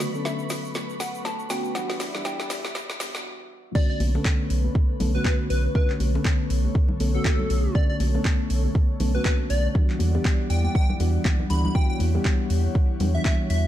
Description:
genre	deep house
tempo	120 BPM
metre	4/4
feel	swing 58% on 16ths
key	B minor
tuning	A4 = 440 Hz
part	mallet-like synth pluck	melody	0.0-2.7 s	D5 to A5	-35 LUFS	left 1 dB	chorus, cassette tape, ping-pong delay
part	airy breathy pad	sustained chords	0.0-13.7 s	D3 to C#6	-35 LUFS	right 1 dB	chorus, sidechain pumping
part	mellow FM electric piano	stabs	0.0-13.7 s	C#3 to A4	-29 LUFS	left 1 dB	chorus, sidechain pumping, ping-pong delay
part	deep house drum kit	drums	0.0-13.6 s	crash cymbal, handclaps, hi-hat, snare drum	-32 LUFS	equal	none
part	egg shaker	percussion	0.0-3.2 s	none	-42 LUFS	left 3 dB	none
part	dark symphonic violin section	texture	0.0-3.2 s	B5	-42 LUFS	right 2 dB	sidechain pumping
part	plucky unison lead	melody	3.8-13.7 s	A4 to B5	-32 LUFS	left 1 dB	dub echo
part	electronic kick drum	drums	3.8-13.4 s	none	-21 LUFS	equal	none
part	warm sub bass	bass	4.0-13.7 s	B1 to E2	-22 LUFS	equal	sidechain pumping
part	congas and bongos	percussion	4.0-13.4 s	none	-34 LUFS	left 3 dB	none
room	digital ambience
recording	dark, warm production, high-pass filter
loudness	-21 LUFS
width	side -12 dB against mid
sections	0.0-3.8 A section; 3.8-13.7 B section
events	build-up 0.0-3.8; drum fill 0.0-3.3; filter sweep on FM electric piano 0.0-3.8; filter sweep 0.0-3.8; break 3.3-3.8; drop 3.8-13.7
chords	0.0 Bm9; 1.8 Em9; 3.8 Bm9; 9.8 Em9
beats	0.25 0.75 1.25 | 1.75 2.25 2.75 3.25 | 3.75 4.25 4.75 5.25 | 5.75 6.25 6.75 7.25 | 7.75 8.25 8.75 9.25 | 9.75 10.25 10.75 11.25 | 11.75 12.25 12.75 13.25

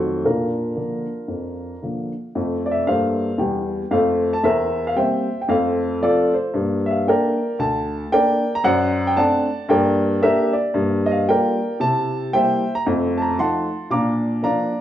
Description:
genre	jazz, stride piano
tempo	114 BPM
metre	4/4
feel	swing 59% on 8ths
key	F major, Bb major from 10.7 s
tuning	A4 = 441 Hz
part	warm upright piano	solo	0.0-14.8 s	D2 to D6	-18 LUFS	equal	none
room	wet large studio reverb, RT60 1.1 s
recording	band playing live in one room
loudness	-18 LUFS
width	side -11 dB against mid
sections	0.0-2.3 A section; 2.3-14.8 B section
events	none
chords	0.2 Bb; 2.3 F; 4.4 C7/E; 5.5 F; 6.5 Gm; 8.6 D7/F#; 9.7 Gm; 10.7 Gm7; 11.8 C7; 12.8 F7b9; 13.9 Bb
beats	| 0.24 0.77 1.29 1.82 | 2.34 2.87 3.40 3.92 | 4.45 4.97 5.50 6.02 | 6.55 7.07 7.60 8.12 | 8.65 9.17 9.70 10.22 | 10.74 11.27 11.79 12.32 | 12.84 13.36 13.89 14.41

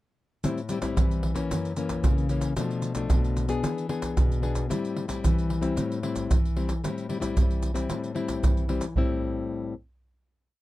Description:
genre	samba and choro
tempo	113 BPM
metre	4/4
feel	straight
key	A minor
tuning	A4 = 440 Hz
part	nylon-string guitar	accompaniment	0.4-9.7 s	F#2 to G#4	-28 LUFS	left 4 dB	none
part	maracas, surdo and pandeiro	percussion	0.4-9.1 s	none	-26 LUFS	right 1 dB	none
room	little or no reverb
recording	dark, warm production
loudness	-24 LUFS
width	side -16 dB against mid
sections	0.4-9.0 A section; 9.0-10.6 final chord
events	none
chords	0.4 Am7; 1.5 F#7; 2.6 Bm7b5; 3.6 E7; 4.7 Am7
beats	| 0.44 0.97 1.51 2.04 | 2.57 3.11 3.64 4.17 | 4.71 5.24 5.77 6.30 | 6.83 7.36 7.89 8.43 | 8.96 9.49

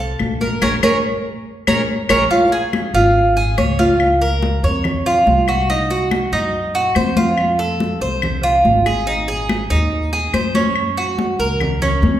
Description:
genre	latin, Cuban son and guajira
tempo	142 BPM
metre	4/4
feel	straight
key	Bb minor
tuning	A4 = 440 Hz
part	Cuban tres	arpeggios	0.0-12.2 s	Db4 to Db5	-16 LUFS	right 1 dB	none
part	upright bass	bass	0.0-12.2 s	Ab1 to Gb2	-21 LUFS	equal	none
part	claves	percussion	0.2-11.8 s	none	-27 LUFS	left 3 dB	none
part	congas	percussion	0.2-12.2 s	none	-22 LUFS	left 2 dB	none
room	wet recital hall reverb, RT60 1.6 s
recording	recorded in a church or concert hall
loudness	-14 LUFS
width	side -11 dB against mid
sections	0.0-2.3 A section; 2.3-12.2 B section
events	band accent 0.6-2.3; drum fill 1.7-2.3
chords	0.0 F (rootless); 0.6 Bbm7; 2.3 Db; 4.0 Bbm/Db; 5.7 Cdim; 7.4 F; 9.1 Ab; 10.8 Gb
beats	0.20 | 0.62 1.04 1.46 1.89 | 2.31 2.73 3.15 3.58 | 4.00 4.42 4.84 5.27 | 5.69 6.11 6.53 6.96 | 7.38 7.80 8.22 8.65 | 9.07 9.49 9.91 10.34 | 10.76 11.18 11.61 12.03

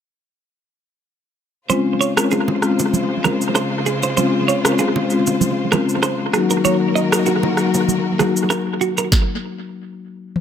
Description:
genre	afrobeats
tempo	97 BPM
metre	4/4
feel	swing 55% on 16ths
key	Db major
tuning	A4 = 439 Hz
part	marimba with soft mallets	accompaniment	1.7-8.4 s	Gb3 to Gb4	-19 LUFS	left 4 dB	none
part	warm studio string section	sustained chords	1.7-9.1 s	Db3 to C5	-25 LUFS	left 1 dB	none
part	clean electric guitar	riff	1.7-9.1 s	Gb4 to Eb5	-22 LUFS	right 7 dB	analog delay
part	afro-pop drum kit	drums	1.7-10.4 s	kick drum, rim click, shaker, snare drum, toms	-22 LUFS	equal	analog delay
part	congas and bongos	percussion	1.7-9.1 s	none	-25 LUFS	right 6 dB	analog delay
room	light reverb, small room ambience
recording	echo-heavy mix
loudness	-15 LUFS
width	side -8 dB against mid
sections	1.7-10.4 A section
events	stop 9.1-10.4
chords	1.7 Dbmaj7; 6.3 Ebm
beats	| 1.70 2.32 2.93 3.55 | 4.17 4.79 5.41 6.03 | 6.65 7.26 7.88 8.50 | 9.12 9.74 10.36

